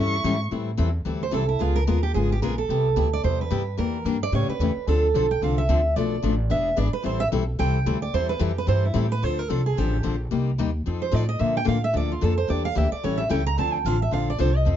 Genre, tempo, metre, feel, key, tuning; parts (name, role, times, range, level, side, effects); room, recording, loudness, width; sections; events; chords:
acoustic string swing (jazz manouche); 220 BPM; 4/4; swing 57% on 8ths; A minor, D minor from 9.2 s; A4 = 440 Hz
picked steel-string acoustic guitar; second line; 0.0-14.8 s; E4 to Bb5; -26 LUFS; right 5 dB
picked steel-string acoustic guitar; accompaniment; 0.0-14.8 s; B2 to A4; -27 LUFS; left 7 dB
upright bass; bass; 0.0-14.8 s; E1 to Bb2; -24 LUFS; equal
light reverb; dark, warm production, nothing above 7.5 kHz; -21 LUFS; side -10 dB against mid
0.5-9.2 A section; 9.2-14.8 A section
steel-string acoustic guitar solo 0.5-14.8
0.0 A7; 0.5 Am7; 1.6 C#13; 2.7 Cmaj7; 3.8 Em7b5; 4.3 A7; 4.9 Dm9; 6.0 Bm7b5; 6.5 E7; 7.0 Am7; 9.2 Dm7; 10.3 Cm7; 10.9 F7; 11.4 Bbmaj7; 12.5 Em7b5; 13.0 A7; 13.6 Dm7